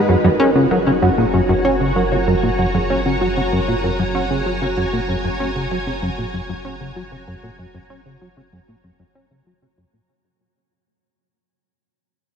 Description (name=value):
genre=ambient, sequencer-driven space music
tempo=96 BPM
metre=4/4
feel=straight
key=F# major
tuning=A4 = 436 Hz
part: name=string machine, full ensemble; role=sustained chords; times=0.0-10.1 s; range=D#4 to A#5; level=-23 LUFS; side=left 1 dB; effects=ensemble chorus, shimmer reverb
part: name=thumb-piano-like synth pluck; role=arpeggios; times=0.0-5.0 s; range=F#3 to F#5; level=-23 LUFS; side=right 4 dB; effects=chorus, auto-pan, vintage 12-bit sampler grit, tape echo, shimmer reverb
part: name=plucky analog bass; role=riff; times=0.1-10.0 s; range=F#2 to C#4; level=-18 LUFS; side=equal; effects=analog chorus, tape echo, shimmer reverb
part: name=warm sub bass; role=bass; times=0.1-10.1 s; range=F#1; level=-29 LUFS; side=equal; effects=none
room=wet huge ambient reverb, RT60 7.5 s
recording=none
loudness=-16 LUFS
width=side -7 dB against mid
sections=0.1-10.1 A section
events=fade-out on sub bass 0.1-10.1; fade-out 0.1-10.1; filter sweep on analog synth bass 0.1-10.1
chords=0.1 F#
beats=| 0.09 0.71 1.34 1.96 | 2.59 3.21 3.84 4.46 | 5.09 5.71 6.34 6.96 | 7.59 8.21 8.84 9.46